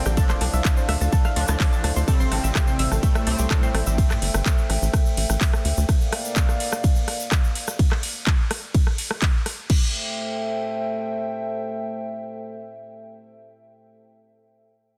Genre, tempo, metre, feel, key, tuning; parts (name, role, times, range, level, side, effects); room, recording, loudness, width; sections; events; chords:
melodic techno; 126 BPM; 4/4; straight; A phrygian; A4 = 442 Hz
dark analog pad; sustained chords; 0.0-13.9 s; A3 to G5; -33 LUFS; equal; chorus, sidechain pumping
analog pluck; arpeggios; 0.0-4.0 s; G4 to A6; -35 LUFS; equal; chorus, sidechain pumping, delay
sync-sweep polysynth; stabs; 0.0-4.0 s; A2 to D4; -35 LUFS; equal; chorus, sidechain pumping, delay
tight sequencer bass; bass; 0.1-5.8 s; D1 to A2; -25 LUFS; equal; sidechain pumping
house drum kit; drums; 0.1-9.8 s; crash cymbal, handclaps, hi-hat, ride cymbal, rim click; -30 LUFS; equal; soft clipping on snare
tube shaker; percussion; 0.1-7.8 s; -38 LUFS; equal
electronic kick drum; drums; 0.2-9.8 s; -22 LUFS; equal
soft supersaw; melody; 2.1-3.7 s; A2 to C4; -35 LUFS; equal; lush chorus, sidechain pumping, delay
light reverb, digital ambience; dense, heavily limited modern master; -22 LUFS; mono
0.0-9.7 A section; 9.7-13.5 B section
drop 0.0-9.7
0.2 Dm; 2.1 Am7; 5.9 Bbadd9; 7.8 N.C.; 9.7 Am7